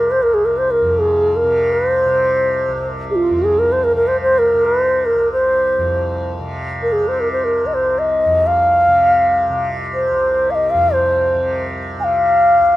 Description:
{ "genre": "indian classical, Hindustani", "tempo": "free time", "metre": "none", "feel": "none", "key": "C raga malkauns", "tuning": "A4 = 440 Hz", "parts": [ { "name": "mellow bansuri", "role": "melody", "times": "0.0-12.8 s", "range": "F4 to Ab5", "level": "-14 LUFS", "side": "equal", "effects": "none" }, { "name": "tanpura", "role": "drone", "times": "0.0-12.8 s", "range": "C2 to C3", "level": "-24 LUFS", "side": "equal", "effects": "stereo widening" } ], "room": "light reverb, studio ambience", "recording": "rough home demo mix", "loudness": "-14 LUFS", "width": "side -16 dB against mid", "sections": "0.0-12.8 A section", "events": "none", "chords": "none" }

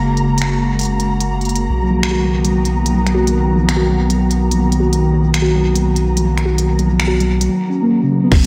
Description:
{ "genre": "IDM", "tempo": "145 BPM", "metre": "4/4", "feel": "swing 62% on 16ths", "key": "unclear", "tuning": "A4 = 439 Hz", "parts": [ { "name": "glassy FM pad", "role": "sustained chords", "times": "0.0-8.5 s", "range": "C#3 to F#4", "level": "-21 LUFS", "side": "equal", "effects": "ensemble chorus, built-in reverb, sidechain pumping" }, { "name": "round analog bass", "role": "bass", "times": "0.0-8.4 s", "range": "F#1 to B1", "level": "-21 LUFS", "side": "equal", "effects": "none" }, { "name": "flickering grainy texture", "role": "texture", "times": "0.0-7.5 s", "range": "A#5", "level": "-30 LUFS", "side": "equal", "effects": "built-in reverb, lush chorus, sidechain pumping" }, { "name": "organic electronic drum kit", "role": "drums", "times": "0.2-8.4 s", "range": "crash cymbal, finger snaps, hi-hat", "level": "-26 LUFS", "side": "equal", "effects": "studio reverb, diffuse ambient delay" }, { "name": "harp-like synth pluck", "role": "arpeggios", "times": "1.8-8.3 s", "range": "C#3 to F#4", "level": "-19 LUFS", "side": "equal", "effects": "chorus, diffuse ambient delay" }, { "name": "electronic kick drum", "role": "drums", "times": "8.3-8.4 s", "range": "none", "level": "-12 LUFS", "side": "equal", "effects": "studio reverb" } ], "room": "wet lush hall reverb, RT60 1.7 s", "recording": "dreamy mix soaked in reverb", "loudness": "-16 LUFS", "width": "mono", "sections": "0.0-8.3 A section", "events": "none", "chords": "0.0 F#add9; 1.7 Bmaj7" }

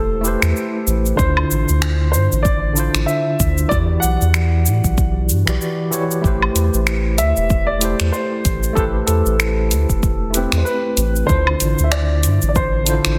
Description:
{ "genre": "sunset chillout", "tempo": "95 BPM", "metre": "4/4", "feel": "swing 57% on 16ths", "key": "A minor", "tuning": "A4 = 440 Hz", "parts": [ { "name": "warm concert grand piano", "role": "melody", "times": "0.0-13.2 s", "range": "A4 to F#5", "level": "-25 LUFS", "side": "equal", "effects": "tape echo" }, { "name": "tine electric piano", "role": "accompaniment", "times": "0.0-13.2 s", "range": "D3 to D5", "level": "-24 LUFS", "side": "equal", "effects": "tape echo" }, { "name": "round analog bass", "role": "bass", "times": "0.0-13.2 s", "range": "E1 to A2", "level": "-20 LUFS", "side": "equal", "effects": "none" }, { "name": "deep house drum kit", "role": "drums", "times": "0.2-13.2 s", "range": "finger snaps, hi-hat, shaker, woodblock", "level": "-24 LUFS", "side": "equal", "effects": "studio reverb, soft clipping on snare" }, { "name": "electronic kick drum", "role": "drums", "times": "1.2-12.7 s", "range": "none", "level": "-22 LUFS", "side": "equal", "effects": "studio reverb" } ], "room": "light reverb", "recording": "dense, heavily limited modern master", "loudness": "-17 LUFS", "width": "mono", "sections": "0.0-13.2 A section", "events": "none", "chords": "0.0 Am9; 1.2 Dm9; 3.7 Em9; 6.2 Am9; 11.3 Dm9" }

